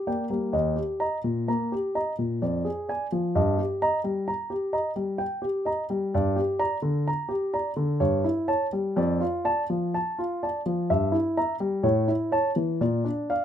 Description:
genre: classical, baroque-style suite movement for grand piano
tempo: 64 BPM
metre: 3/4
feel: rubato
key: D minor from 6.1 s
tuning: A4 = 440 Hz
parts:
  - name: warm grand piano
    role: solo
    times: 0.0-13.4 s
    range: Eb2 to Bb5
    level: -24 LUFS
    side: equal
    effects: none
room: little or no reverb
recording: close, detailed microphones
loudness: -24 LUFS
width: side -9 dB against mid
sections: 0.0-13.4 A section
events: none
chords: 0.0 Gm/Bb; 0.5 Eb; 2.4 Ddim/F; 3.4 Eb/G; 6.1 Gm; 8.0 A7/G; 9.0 Dm/F; 10.9 Edim/G; 11.8 A; 12.8 Bb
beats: | 0.52 1.47 2.42 | 3.35 4.28 5.20 | 6.14 7.07 8.01 | 8.97 9.94 10.90 | 11.85 12.81

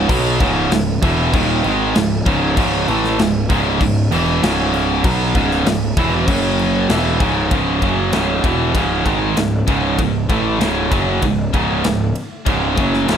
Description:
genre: heavy metal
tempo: 97 BPM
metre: 4/4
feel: straight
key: C# minor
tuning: A4 = 439 Hz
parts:
  - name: high-gain distorted guitar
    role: riff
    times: 0.0-13.2 s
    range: C#2 to B3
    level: -20 LUFS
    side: left 8 dB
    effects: distortion
  - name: tight distorted guitar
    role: riff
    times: 0.0-13.2 s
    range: C#2 to B3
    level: -19 LUFS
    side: right 7 dB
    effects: distortion
  - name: fuzz picked electric bass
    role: bass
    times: 0.0-13.2 s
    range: C#1 to B1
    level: -21 LUFS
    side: left 1 dB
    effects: overdrive
  - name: tight metal drum kit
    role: drums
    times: 0.1-13.2 s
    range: crash cymbal, kick drum, ride cymbal, snare drum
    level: -21 LUFS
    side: left 1 dB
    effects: none
room: light reverb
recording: dark, warm production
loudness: -14 LUFS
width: side -8 dB against mid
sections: 0.0-7.5 A section; 7.5-13.2 B section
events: none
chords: 0.0 C#m; 6.3 F#5; 6.9 C#m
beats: | 0.09 0.71 1.33 1.95 | 2.57 3.19 3.81 4.43 | 5.05 5.66 6.28 6.90 | 7.52 8.14 8.76 9.38 | 9.99 10.61 11.23 11.85 | 12.47 13.09

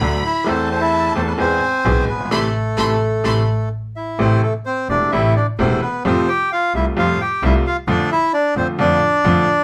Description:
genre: tango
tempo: 130 BPM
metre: 4/4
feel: rubato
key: A minor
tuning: A4 = 439 Hz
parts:
  - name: rich studio violin section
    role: second line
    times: 0.0-3.4 s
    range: G#5 to C6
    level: -28 LUFS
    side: equal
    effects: none
  - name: bright upright piano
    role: accompaniment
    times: 0.0-9.4 s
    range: E1 to A4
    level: -23 LUFS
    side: equal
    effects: none
  - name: clear double bass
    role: bass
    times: 0.0-9.4 s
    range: E1 to F2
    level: -23 LUFS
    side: equal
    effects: none
  - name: bandoneon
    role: melody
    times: 0.3-9.6 s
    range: A3 to G5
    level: -21 LUFS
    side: equal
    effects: none
room: moderate studio ambience, RT60 0.4 s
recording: band playing live in one room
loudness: -18 LUFS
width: mono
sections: 0.0-4.2 A section; 4.2-9.6 B section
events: band accent 2.3-4.2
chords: 0.5 Am/E; 1.4 E; 2.3 Amadd9; 4.2 Am; 6.1 Fadd9; 7.9 Dm/F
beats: 0.01 | 0.47 0.93 1.39 1.85 | 2.32 2.78 3.25 3.73 | 4.20 4.67 5.13 5.60 | 6.05 6.51 6.97 7.43 | 7.88 8.33 8.79 9.25

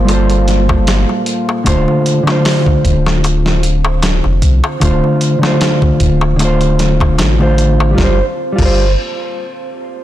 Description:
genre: trip hop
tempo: 76 BPM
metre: 4/4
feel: swing 54% on 16ths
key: G minor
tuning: A4 = 440 Hz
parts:
  - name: mellow electric guitar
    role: accompaniment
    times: 0.0-8.9 s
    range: D3 to C5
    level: -14 LUFS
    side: equal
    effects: harmonic tremolo, tape echo
  - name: deep dark ambient pad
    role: sustained chords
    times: 0.0-8.3 s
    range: Bb3 to D6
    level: -23 LUFS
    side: right 1 dB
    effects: chorus, built-in reverb
  - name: round analog bass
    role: bass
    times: 0.0-9.0 s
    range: D1 to C2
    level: -14 LUFS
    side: equal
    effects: tube saturation
  - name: dusty soul sampler-style drum kit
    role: drums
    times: 0.1-8.7 s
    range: crash cymbal, hi-hat, kick drum, snare drum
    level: -16 LUFS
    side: equal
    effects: none
  - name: darbuka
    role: percussion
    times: 0.1-7.9 s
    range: none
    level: -22 LUFS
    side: left 3 dB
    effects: none
room: digital ambience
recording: blown-out, overdriven recording, overdrive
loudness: -10 LUFS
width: side -13 dB against mid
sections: 0.0-8.0 A section; 8.0-10.0 B section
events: filter sweep on ambient pad 0.0-8.0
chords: 0.0 Gm11; 1.7 Dm7; 8.0 Gm11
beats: 0.09 0.88 | 1.67 2.46 3.25 4.04 | 4.82 5.61 6.40 7.19 | 7.98 8.77

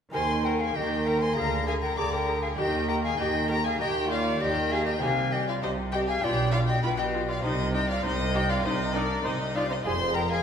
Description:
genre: classical, baroque-style concerto movement with solo episodes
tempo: 99 BPM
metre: 4/4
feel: straight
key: Eb major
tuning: A4 = 435 Hz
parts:
  - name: silver concert flute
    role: melody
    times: 0.1-10.4 s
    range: Bb4 to Bb5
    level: -31 LUFS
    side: left 2 dB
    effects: none
  - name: warm chamber violin section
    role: melody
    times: 0.1-10.4 s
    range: D5 to D6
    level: -32 LUFS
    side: left 4 dB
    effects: none
  - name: warm chamber violin section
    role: second line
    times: 0.1-10.4 s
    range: D4 to D5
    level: -33 LUFS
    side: equal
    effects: none
  - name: lute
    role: accompaniment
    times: 0.1-10.4 s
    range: F2 to Ab4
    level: -37 LUFS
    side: right 1 dB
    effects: none
  - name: warm chamber viola section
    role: accompaniment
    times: 0.1-10.2 s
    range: Eb4 to Bb4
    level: -35 LUFS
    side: right 1 dB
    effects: none
  - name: rich chamber double bass section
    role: bass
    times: 0.1-10.4 s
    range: F1 to Eb2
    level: -31 LUFS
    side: right 2 dB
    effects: none
  - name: warm chamber cello section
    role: bass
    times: 0.1-10.4 s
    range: F2 to Eb3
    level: -33 LUFS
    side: equal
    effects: none
room: wet recital hall reverb, RT60 1.6 s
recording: heard from further back in the room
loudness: -24 LUFS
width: side -7 dB against mid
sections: 0.1-10.4 A section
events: none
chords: 0.1 Eb; 1.4 Bb7/D; 2.6 Eb; 5.0 Cm; 6.2 G7/B; 7.4 Cm; 9.9 Fm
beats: | 0.14 0.75 1.36 1.98 | 2.58 3.19 3.80 4.41 | 5.02 5.63 6.23 6.84 | 7.44 8.05 8.65 9.26 | 9.86

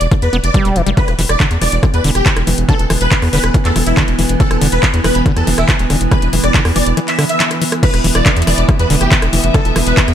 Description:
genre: psychedelic trance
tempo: 140 BPM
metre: 4/4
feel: straight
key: unclear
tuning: A4 = 439 Hz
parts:
  - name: dense compressed supersaw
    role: melody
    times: 0.0-10.0 s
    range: E4 to E5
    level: -20 LUFS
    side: equal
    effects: phaser, sidechain pumping, digital delay
  - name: round analog bass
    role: bass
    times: 0.0-10.1 s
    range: E1 to E2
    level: -16 LUFS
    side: equal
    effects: none
  - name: big-room dance drum kit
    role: drums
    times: 0.0-10.1 s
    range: crash cymbal, handclaps, hi-hat, rim click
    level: -18 LUFS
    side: left 1 dB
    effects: small room ambience
  - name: overdriven acid bass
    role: riff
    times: 0.1-10.0 s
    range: D3 to B3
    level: -20 LUFS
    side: equal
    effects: distortion, auto-pan, cassette tape, sidechain pumping, digital delay
  - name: electronic kick drum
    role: drums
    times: 0.1-10.1 s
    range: none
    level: -13 LUFS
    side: equal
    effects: small room ambience
  - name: evolving wavetable pad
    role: sustained chords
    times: 1.4-10.1 s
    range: E3 to B3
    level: -20 LUFS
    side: right 2 dB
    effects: chorus, built-in reverb, sidechain pumping
  - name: dark chamber string section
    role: texture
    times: 7.8-10.1 s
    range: E4 to E5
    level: -23 LUFS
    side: left 4 dB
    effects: sidechain pumping
room: light reverb, digital ambience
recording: none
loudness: -11 LUFS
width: side -10 dB against mid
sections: 0.0-7.8 A section; 7.8-10.1 B section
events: break 7.0-7.8; drop 7.8-10.1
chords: 0.0 E5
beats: 0.12 0.54 | 0.97 1.40 1.83 2.26 | 2.69 3.12 3.54 3.97 | 4.40 4.83 5.26 5.69 | 6.12 6.54 6.97 7.40 | 7.83 8.26 8.69 9.12 | 9.54 9.97

